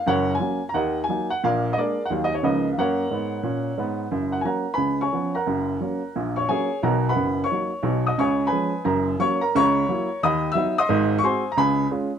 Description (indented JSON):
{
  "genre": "jazz, stride piano",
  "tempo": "178 BPM",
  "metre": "4/4",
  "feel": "swing 63% on 8ths",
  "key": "F# major",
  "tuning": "A4 = 442 Hz",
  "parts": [
    { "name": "warm upright piano", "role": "solo", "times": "0.0-12.1 s", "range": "F#1 to E6", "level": "-20 LUFS", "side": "equal", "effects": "none" }
  ],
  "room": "moderate studio reverb, RT60 0.8 s",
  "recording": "none",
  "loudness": "-20 LUFS",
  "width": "side -8 dB against mid",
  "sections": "0.0-4.1 A section; 4.1-12.2 B section",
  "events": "none",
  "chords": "0.1 F#; 0.7 D#m; 1.4 A#7; 2.1 D#m; 2.4 C#13; 2.8 F#; 4.8 C#7; 5.5 F#; 6.2 F#/A#; 6.8 Bmaj7; 8.2 C#7; 8.9 F#; 9.5 F#7/C#; 10.2 B/D#; 10.9 G#7; 11.6 C#7"
}